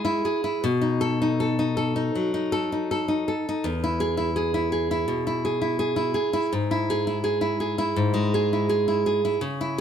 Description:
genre	romantic piece for solo classical guitar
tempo	82 BPM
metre	4/4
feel	uneven beats, rubato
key	E major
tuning	A4 = 440 Hz
part	nylon-string guitar	solo	0.0-9.8 s	E2 to A4	-22 LUFS	equal	none
room	light reverb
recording	close, detailed microphones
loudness	-22 LUFS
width	side -8 dB against mid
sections	0.0-9.8 A section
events	none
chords	0.0 E; 0.6 B7; 3.6 E; 6.5 E/G#

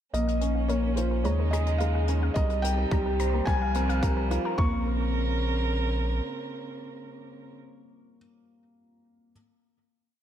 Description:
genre	piano and strings electronica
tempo	108 BPM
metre	4/4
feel	straight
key	Bb dorian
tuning	A4 = 440 Hz
part	felt-muted upright piano	melody	0.1-8.2 s	C5 to Db6	-33 LUFS	left 1 dB	analog delay
part	dark string quartet	sustained chords	0.1-7.6 s	C3 to Bb4	-35 LUFS	right 3 dB	sidechain pumping
part	analog pluck	arpeggios	0.1-4.8 s	Bb3 to Bb5	-38 LUFS	left 3 dB	chorus, sidechain pumping, analog delay
part	warm upright piano	riff	0.1-9.3 s	G3 to C5	-32 LUFS	equal	wide subtle chorus, analog delay
part	warm sub bass	bass	0.1-6.2 s	Bb1 to Eb2	-27 LUFS	equal	sidechain pumping
part	hi-hat	drums	0.1-4.4 s	none	-42 LUFS	left 5 dB	none
part	organic electronic drum kit	drums	2.4-4.7 s	kick drum, toms	-27 LUFS	equal	none
room	moderate plate reverb, RT60 2.0 s, small room ambience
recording	dreamy mix soaked in reverb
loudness	-24 LUFS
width	side -10 dB against mid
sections	0.1-4.6 build; 4.6-6.8 final chord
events	build-up 0.1-4.6; filter sweep on synth arpeggio sound 0.1-4.6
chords	0.1 Bbm; 1.3 Eb7sus4; 2.4 Cm; 3.5 Fmadd9/C; 4.6 Bbmadd9

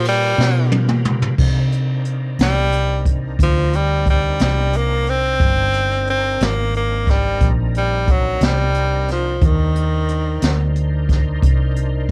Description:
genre	slow blues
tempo	60 BPM (dotted quarters)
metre	12/8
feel	straight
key	C minor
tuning	A4 = 441 Hz
part	edgy tenor saxophone	melody	0.0-10.8 s	Eb3 to C4	-22 LUFS	equal	cassette tape
part	overdriven tonewheel organ	sustained chords	0.0-12.1 s	C4 to C5	-34 LUFS	equal	chorus vibrato, slow rotary speaker, cassette tape
part	hollow-body short-scale fingered electric bass	bass	0.0-12.1 s	G1 to C3	-21 LUFS	equal	none
part	jazz brush drum kit	drums	0.0-12.1 s	crash cymbal, hi-hat, kick drum, ride cymbal, snare drum, toms	-21 LUFS	equal	cassette tape
room	little or no reverb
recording	home recording on cassette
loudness	-18 LUFS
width	mono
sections	0.0-1.4 A section; 1.4-12.1 B section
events	tenor saxophone solo 0.0-1.4; drum fill 0.4-1.4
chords	0.0 G7#9; 1.4 Cm9

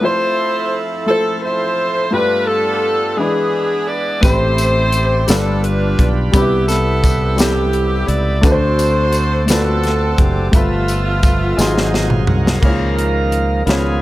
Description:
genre	slow gospel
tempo	57 BPM (dotted quarters)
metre	6/8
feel	straight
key	C major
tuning	A4 = 440 Hz
part	edgy saxophone section	melody	0.0-12.3 s	A3 to D5	-18 LUFS	equal	none
part	warm baby grand piano	accompaniment	0.0-14.0 s	G2 to C6	-21 LUFS	left 2 dB	none
part	bright tonewheel organ	sustained chords	0.0-14.0 s	C3 to Gb5	-25 LUFS	right 2 dB	slow rotary speaker, overdrive
part	fingered electric bass	bass	4.2-14.0 s	F#1 to D2	-18 LUFS	equal	none
part	crisp fusion drum kit	drums	4.2-13.8 s	crash cymbal, hi-hat, kick drum, snare drum, toms	-16 LUFS	equal	none
part	tambourine	percussion	4.2-11.9 s	none	-28 LUFS	left 3 dB	none
part	mellow French horn section	sustained chords	12.6-14.0 s	Ab3 to F5	-28 LUFS	equal	none
room	light reverb, small room ambience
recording	none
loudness	-13 LUFS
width	side -16 dB against mid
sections	0.0-12.6 A section; 12.6-14.0 B section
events	drum fill 11.6-12.6; tonewheel organ fill 11.6-12.6; tonewheel organ solo 12.6-14.0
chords	0.0 Fmaj7; 2.1 G9; 3.2 E7; 4.2 Am9; 5.3 G7; 6.3 Cmaj7; 8.4 D7; 10.5 G13; 11.6 Ab7; 12.6 Db6

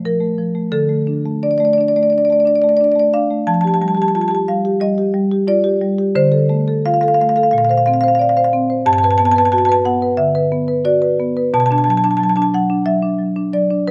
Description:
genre	classical, contemporary piece for solo marimba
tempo	89 BPM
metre	4/4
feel	rubato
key	Bb major, G major from 8.8 s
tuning	A4 = 440 Hz
part	marimba with medium mallets	solo	0.0-13.9 s	G2 to A5	-16 LUFS	equal	none
room	light reverb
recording	close, detailed microphones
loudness	-16 LUFS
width	mono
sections	0.0-13.9 A section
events	none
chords	0.0 Bb5; 0.7 D5; 3.5 F9; 6.2 Dm7; 7.5 Bbadd9; 8.8 Gmaj9; 11.5 Bm7

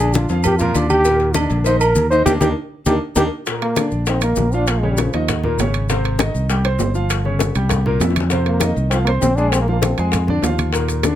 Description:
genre	Afro-Cuban jazz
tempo	198 BPM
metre	4/4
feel	straight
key	Eb major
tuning	A4 = 440 Hz
part	warm trombone	melody	0.0-5.3, 8.5-10.1 s	F3 to C5	-19 LUFS	equal	none
part	clear concert grand piano	accompaniment	0.0-11.2 s	Bb2 to C6	-22 LUFS	equal	none
part	fingered electric bass	bass	0.0-11.1 s	G1 to F2	-19 LUFS	equal	none
part	congas	percussion	0.0-11.2 s	none	-24 LUFS	left 2 dB	none
part	cowbell and bongos	percussion	0.1-11.2 s	none	-26 LUFS	left 9 dB	none
part	maracas	percussion	0.1-11.2 s	none	-29 LUFS	left 4 dB	none
part	agogo bells and timbales	percussion	0.4-11.2 s	none	-26 LUFS	right 6 dB	none
room	light reverb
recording	close, detailed microphones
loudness	-15 LUFS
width	side -11 dB against mid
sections	0.0-3.5 A section; 3.5-11.2 B section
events	trombone solo 0.0-3.5; band accent 2.3-3.5; drum fill 7.7-8.3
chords	0.0 Bb; 1.1 Ebmaj7; 3.5 Ebsus2; 4.7 Bbm; 5.3 Eb5; 5.9 Abmaj7; 7.1 Dbmaj7#11/G; 7.7 C7; 8.3 Fm7; 9.5 Bb9

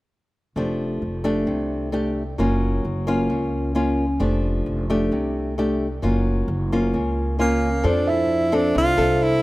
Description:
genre	bossa nova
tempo	132 BPM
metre	4/4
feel	straight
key	F major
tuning	A4 = 440 Hz
part	nylon-string guitar	accompaniment	0.6-9.4 s	C3 to A4	-22 LUFS	left 1 dB	none
part	upright bass	bass	0.6-9.4 s	F1 to F2	-25 LUFS	equal	none
part	clear tenor saxophone	melody	7.4-9.4 s	Bb3 to F4	-21 LUFS	right 1 dB	none
part	barky tine electric piano	accompaniment	8.1-9.4 s	E5	-27 LUFS	right 5 dB	overdrive
room	light reverb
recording	rough home demo mix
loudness	-19 LUFS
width	side -18 dB against mid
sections	0.6-7.8 A section; 7.8-9.4 B section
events	none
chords	0.6 F69; 2.4 Gbmaj7; 4.2 F69; 6.0 Gbmaj7; 7.8 F6

